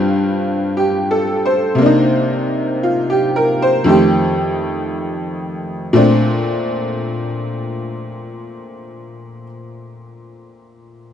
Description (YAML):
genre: solo jazz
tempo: 58 BPM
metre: 4/4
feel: swing 66% on 8ths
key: Bb major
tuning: A4 = 438 Hz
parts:
  - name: tack piano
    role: solo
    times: 0.0-11.1 s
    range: F2 to C5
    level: -15 LUFS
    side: equal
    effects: none
room: moderate studio reverb, RT60 0.8 s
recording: nothing above 10.8 kHz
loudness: -14 LUFS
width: side -9 dB against mid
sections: 0.0-5.9 A section; 5.9-10.1 B section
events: none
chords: 0.0 G7sus4; 1.8 Cm9; 3.9 F9; 5.9 Bbmaj9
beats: 0.76 | 1.80 2.83 3.87 4.90 | 5.94 6.97 8.01 9.04